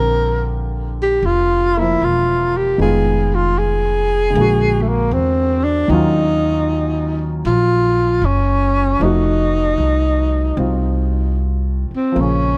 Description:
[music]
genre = jazz ballad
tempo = 77 BPM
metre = 4/4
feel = swing 68% on 8ths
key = unclear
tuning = A4 = 440 Hz
[part]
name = breathy tenor saxophone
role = melody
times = 0.0-12.6 s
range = A3 to Bb4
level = -19 LUFS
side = equal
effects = none
[part]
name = warm upright piano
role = accompaniment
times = 0.0-12.6 s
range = Db3 to Ab4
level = -25 LUFS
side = equal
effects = none
[part]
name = upright bass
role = bass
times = 0.0-12.6 s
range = E1 to E2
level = -21 LUFS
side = equal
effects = none
[sound]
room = light reverb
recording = none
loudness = -17 LUFS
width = mono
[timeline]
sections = 0.0-12.2 A section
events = none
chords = 0.0 Bb69; 2.8 Fm7b5; 4.3 Bb7b13; 5.9 Ebm9; 9.0 F7b9

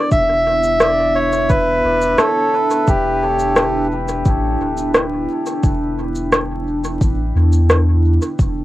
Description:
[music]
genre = ambient dub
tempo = 87 BPM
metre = 4/4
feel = straight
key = E minor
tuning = A4 = 442 Hz
[part]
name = melodica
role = melody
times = 0.0-3.9 s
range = G4 to E5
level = -18 LUFS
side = equal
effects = vintage 12-bit sampler grit, cassette tape, dub echo
[part]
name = deep dark ambient pad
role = sustained chords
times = 0.0-8.6 s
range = B3 to A4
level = -22 LUFS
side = equal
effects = chorus, built-in reverb, cassette tape
[part]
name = soft dub sub bass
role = bass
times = 0.1-8.6 s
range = D1 to E2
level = -20 LUFS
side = equal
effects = none
[part]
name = electronic kick drum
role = drums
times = 0.1-8.5 s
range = none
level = -16 LUFS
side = equal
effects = none
[part]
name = electronic shaker and rim click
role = drums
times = 0.1-8.5 s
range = none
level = -17 LUFS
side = equal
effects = dub echo
[sound]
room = moderate booth ambience, RT60 0.2 s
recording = home recording on cassette, vinyl crackle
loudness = -14 LUFS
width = side -16 dB against mid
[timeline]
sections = 0.1-8.6 A section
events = none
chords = 0.0 Em7

